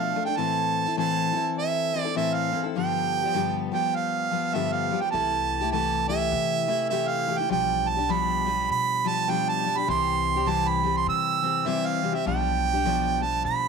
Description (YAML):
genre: acoustic folk duo or small band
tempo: 101 BPM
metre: 4/4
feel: swing 62% on 8ths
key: C major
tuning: A4 = 440 Hz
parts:
  - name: clear harmonica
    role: melody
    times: 0.0-13.7 s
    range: E5 to E6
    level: -25 LUFS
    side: right 8 dB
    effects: none
  - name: picked steel-string acoustic guitar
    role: accompaniment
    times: 0.0-13.7 s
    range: G2 to A4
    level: -28 LUFS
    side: left 11 dB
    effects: none
  - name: upright bass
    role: bass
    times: 5.1-13.7 s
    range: B1 to C3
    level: -33 LUFS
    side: left 1 dB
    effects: none
room: moderate echo chamber reverb, RT60 1.4 s, small room ambience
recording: 1960s-style stereo with parts hard left and right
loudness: -23 LUFS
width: side -5 dB against mid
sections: 0.0-13.7 A section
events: none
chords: 0.4 Am; 2.8 G7; 5.1 C6; 7.5 G7/B; 9.9 C; 12.3 G7/B